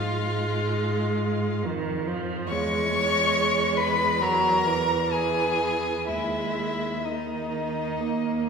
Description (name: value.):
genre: classical, slow romantic movement for string quartet.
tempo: 61-71 BPM.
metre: 4/4.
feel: rubato.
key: unclear.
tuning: A4 = 443 Hz.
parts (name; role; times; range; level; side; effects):
rich violin; melody; 0.0-8.5 s; D#5 to C#6; -27 LUFS; left 4 dB; none.
clear violin; second line; 0.0-8.5 s; D#4 to C#5; -29 LUFS; equal; none.
rich viola; accompaniment; 0.0-8.5 s; D#3 to A#3; -28 LUFS; right 4 dB; none.
clear cello; bass; 0.0-8.5 s; D#2 to Ab2; -31 LUFS; right 1 dB; none.
room: wet scoring stage reverb, RT60 1.9 s.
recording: heard from further back in the room.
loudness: -23 LUFS.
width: side -6 dB against mid.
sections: 0.0-8.5 A section.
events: none.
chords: 0.0 Fm7; 2.5 E6; 6.1 G#5/D#; 8.0 D#5.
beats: 0.77 1.64 | 2.50 3.35 4.21 5.12 | 6.08 7.04 7.99.